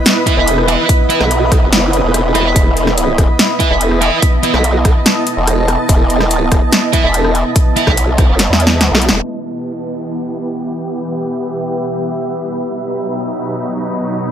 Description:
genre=heavy wobble dubstep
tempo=144 BPM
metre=4/4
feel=half-time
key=E harmonic minor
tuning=A4 = 440 Hz
part: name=supersaw pad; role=sustained chords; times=0.0-14.3 s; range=B2 to D#5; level=-22 LUFS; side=equal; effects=sidechain pumping, low-pass filter
part: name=granular cloud pad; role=texture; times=0.0-14.3 s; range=B3 to B5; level=-19 LUFS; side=right 1 dB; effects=built-in reverb, sidechain pumping
part: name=big-room dance drum kit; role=drums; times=0.1-9.2 s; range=hi-hat, rim click, snare drum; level=-15 LUFS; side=equal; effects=studio ambience
part: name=thick fuzz guitar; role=stabs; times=0.3-7.8 s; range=E4 to E5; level=-18 LUFS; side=right 3 dB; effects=distortion, digital delay
part: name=electronic kick drum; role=drums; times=0.3-8.3 s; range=none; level=-12 LUFS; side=equal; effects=studio ambience
part: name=formant-sweep wobble bass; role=bass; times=0.4-9.2 s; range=E1 to E2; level=-14 LUFS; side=equal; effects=chorus, overdrive
part: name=downlifter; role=sound effects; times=9.4-12.6 s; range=none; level=-46 LUFS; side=right 1 dB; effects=none
room=light reverb, digital ambience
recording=low-pass filter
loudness=-11 LUFS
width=side -9 dB against mid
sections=0.0-9.2 A section; 9.2-14.3 B section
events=drop 0.0-9.2; drum fill 8.4-9.2; band accent 9.1; filter sweep on supersaw synth 9.2-14.3; filter sweep 9.2-14.3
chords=0.0 E5; 9.2 Em; 12.6 B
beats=0.06 0.47 | 0.89 1.31 1.73 2.14 | 2.56 2.98 3.39 3.81 | 4.22 4.64 5.06 5.47 | 5.89 6.31 6.72 7.14 | 7.56 7.97 8.39 8.81 | 9.22 9.64 10.06 10.47 | 10.89 11.31 11.72 12.14 | 12.56 12.97 13.39 13.81 | 14.22

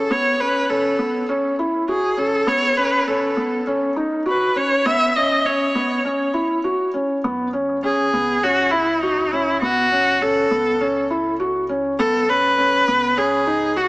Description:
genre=piano and strings electronica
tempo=101 BPM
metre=4/4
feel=straight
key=F# dorian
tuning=A4 = 440 Hz
part: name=rich viola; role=melody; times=0.0-13.9 s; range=D#4 to E5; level=-18 LUFS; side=equal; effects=none
part: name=felt-muted upright piano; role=riff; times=0.0-13.9 s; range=B3 to F#4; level=-21 LUFS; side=equal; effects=none
part: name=round analog bass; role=bass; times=7.2-13.9 s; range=F#1 to C#2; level=-40 LUFS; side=equal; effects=none
room=wet concert hall reverb, RT60 2.4 s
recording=small speaker sound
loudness=-17 LUFS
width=side -21 dB against mid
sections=0.0-7.2 A section; 7.2-13.9 B section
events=build-up 0.0-7.2; break 6.0-7.2; drop 7.2-13.9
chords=0.0 A; 2.5 N.C.; 4.9 Bsus2; 7.2 F#5; 12.0 B/F#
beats=| 0.11 0.70 1.30 1.89 | 2.48 3.08 3.67 4.27 | 4.86 5.46 6.05 6.64 | 7.24 7.83 8.43 9.02 | 9.61 10.21 10.80 11.39 | 11.99 12.58 13.18 13.77

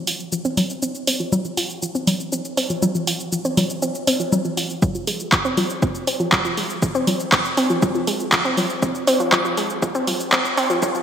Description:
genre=melodic techno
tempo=120 BPM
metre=4/4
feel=straight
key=unclear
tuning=A4 = 439 Hz
part: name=analog pluck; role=arpeggios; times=0.0-11.0 s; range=F3 to F4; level=-22 LUFS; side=equal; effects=chorus, sidechain pumping, digital delay
part: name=punchy analog drum machine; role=drums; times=0.1-11.0 s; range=congas, handclaps, hi-hat, shaker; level=-21 LUFS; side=equal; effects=none
part: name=electronic kick drum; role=drums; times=4.8-10.9 s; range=none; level=-23 LUFS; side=equal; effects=none
room=wet plate reverb, RT60 2.5 s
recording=bright 1980s-style digital production, high-pass filter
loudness=-18 LUFS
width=side -8 dB against mid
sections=0.0-11.0 A section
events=build-up 0.0-11.0; filter sweep on synth arpeggio sound 0.0-11.0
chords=none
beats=0.32 | 0.82 1.32 1.82 2.32 | 2.82 3.32 3.82 4.32 | 4.82 5.32 5.82 6.32 | 6.82 7.32 7.82 8.32 | 8.82 9.32 9.82 10.32 | 10.82

